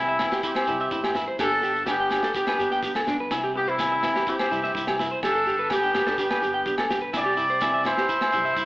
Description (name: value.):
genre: highlife guitar band.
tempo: 126 BPM.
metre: 4/4.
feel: straight.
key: C major.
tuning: A4 = 438 Hz.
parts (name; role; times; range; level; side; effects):
warm horn section; melody; 0.0-8.7 s; G3 to D5; -24 LUFS; equal; none.
nylon-string guitar; accompaniment; 0.0-8.7 s; G2 to G4; -37 LUFS; left 2 dB; none.
fingered electric bass; bass; 0.0-8.7 s; G1 to C2; -44 LUFS; equal; none.
electric guitar at the edge of break-up; arpeggios; 0.1-8.6 s; D4 to G5; -28 LUFS; right 1 dB; none.
tight funk drum kit; drums; 0.2-8.7 s; kick drum, snare drum; -34 LUFS; equal; none.
agogo bells; percussion; 0.2-8.3 s; none; -29 LUFS; left 1 dB; none.
shekere; percussion; 0.2-8.7 s; none; -38 LUFS; right 1 dB; none.
room: moderate large studio reverb, RT60 1.2 s.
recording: band playing live in one room, AM radio sound.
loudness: -21 LUFS.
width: side -20 dB against mid.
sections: 0.0-8.7 A section.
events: none.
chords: 0.0 C; 1.4 Gadd9; 3.3 C; 5.2 Gadd9; 7.1 C.